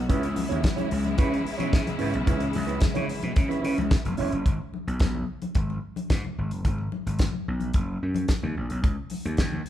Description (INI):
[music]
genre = disco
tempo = 110 BPM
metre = 4/4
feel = straight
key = G# minor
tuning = A4 = 440 Hz
[part]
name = clear studio string section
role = sustained chords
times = 0.0-4.4 s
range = C#3 to E4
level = -33 LUFS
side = left 1 dB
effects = none
[part]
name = gritty slap bass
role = bass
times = 0.0-9.6 s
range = E1 to C#3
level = -29 LUFS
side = equal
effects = overdrive
[part]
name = mellow electric guitar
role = accompaniment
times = 0.1-4.4 s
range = C#4 to C#5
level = -30 LUFS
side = right 4 dB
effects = none
[part]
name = damped 70s drum kit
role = drums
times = 0.1-9.7 s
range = hi-hat, kick drum, snare drum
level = -25 LUFS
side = equal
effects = none
[part]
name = congas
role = percussion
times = 0.1-9.6 s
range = none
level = -34 LUFS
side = left 4 dB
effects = none
[sound]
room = moderate large studio reverb, RT60 1.2 s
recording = band playing live in one room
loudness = -24 LUFS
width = side -12 dB against mid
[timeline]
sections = 0.0-4.5 A section; 4.5-9.7 B section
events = none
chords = 0.1 C#m7; 4.5 G#m7; 8.8 N.C.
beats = | 0.09 0.64 1.19 1.73 | 2.28 2.82 3.37 3.92 | 4.46 5.01 5.56 6.10 | 6.65 7.20 7.74 8.29 | 8.84 9.39